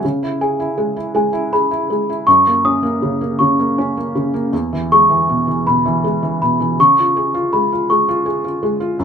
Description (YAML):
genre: children's music, lullaby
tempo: 54 BPM (dotted quarters)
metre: 6/8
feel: rubato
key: unclear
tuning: A4 = 440 Hz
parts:
  - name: felt-muted upright piano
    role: accompaniment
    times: 0.0-9.0 s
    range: E2 to G#4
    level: -18 LUFS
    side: right 1 dB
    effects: none
  - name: celesta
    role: melody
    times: 0.4-8.7 s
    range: G#5 to D#6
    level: -15 LUFS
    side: left 1 dB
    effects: none
room: moderate studio reverb, RT60 0.6 s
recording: minimal, uncompressed stereo recording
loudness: -13 LUFS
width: side -7 dB against mid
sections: 0.0-9.0 A section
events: none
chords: 0.0 C#m; 2.3 F#; 4.5 E; 6.8 C#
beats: | 0.03 1.14 | 2.27 3.39 | 4.53 5.66 | 6.78 7.88 | 8.98